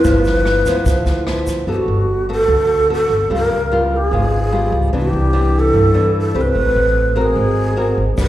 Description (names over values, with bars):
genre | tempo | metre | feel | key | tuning
bossa nova | 148 BPM | 4/4 | straight | unclear | A4 = 440 Hz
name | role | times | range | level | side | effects
breathy long shakuhachi | melody | 0.0-8.3 s | F#4 to B4 | -18 LUFS | right 1 dB | slapback echo
nylon-string guitar | accompaniment | 0.0-8.3 s | G2 to B4 | -18 LUFS | left 1 dB | slapback echo
upright bass | bass | 0.0-8.3 s | G1 to G2 | -18 LUFS | equal | none
open jazz drum kit | drums | 0.0-1.5, 8.2-8.3 s | kick drum, rim click, snare drum | -22 LUFS | equal | none
tube shaker | percussion | 0.0-1.7, 8.2-8.3 s | none | -37 LUFS | right 2 dB | none
room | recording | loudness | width
light reverb | live gig heard through the venue's PA, recital hall reverb | -13 LUFS | side -14 dB against mid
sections
0.0-1.7 A section; 1.7-8.3 B section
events
none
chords
0.0 G6; 1.7 Gmaj9; 3.3 C#7#11; 4.9 Cmaj9; 6.5 Am9; 7.4 Ab9